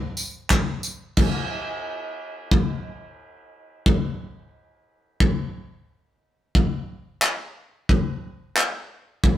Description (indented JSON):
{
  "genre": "pop",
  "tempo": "89 BPM",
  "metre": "4/4",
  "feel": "swing 60% on 16ths",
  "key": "none",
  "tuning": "none",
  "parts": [
    { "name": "modern studio drum kit", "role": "drums", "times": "0.2-9.4 s", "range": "crash cymbal, handclaps, kick drum, tambourine", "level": "-21 LUFS", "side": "equal", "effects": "none" }
  ],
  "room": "light reverb",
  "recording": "rough rehearsal-room recording",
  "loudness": "-22 LUFS",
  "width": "side -12 dB against mid",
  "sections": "0.0-1.2 A section; 1.2-9.4 B section",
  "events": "none",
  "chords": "none"
}